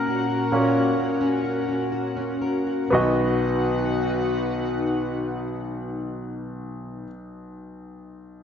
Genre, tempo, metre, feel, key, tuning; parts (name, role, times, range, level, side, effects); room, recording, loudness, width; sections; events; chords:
pop ballad; 59-68 BPM; 4/4; straight; B major; A4 = 439 Hz
clear concert grand piano; accompaniment; 0.0-8.4 s; B1 to D#5; -26 LUFS; equal
airy breathy pad; sustained chords; 0.0-7.1 s; A#2 to F#5; -27 LUFS; left 1 dB; chorus
fingerpicked plugged-in steel-string acoustic guitar; arpeggios; 0.0-7.2 s; B2 to B4; -28 LUFS; left 1 dB
moderate lush hall reverb, RT60 2.6 s; nothing above 7.5 kHz; -22 LUFS; side -8 dB against mid
0.0-2.9 A section; 2.9-7.0 B section
slowing down 0.0-2.9; grand piano solo 0.0-2.9
0.0 F#/A#; 2.9 B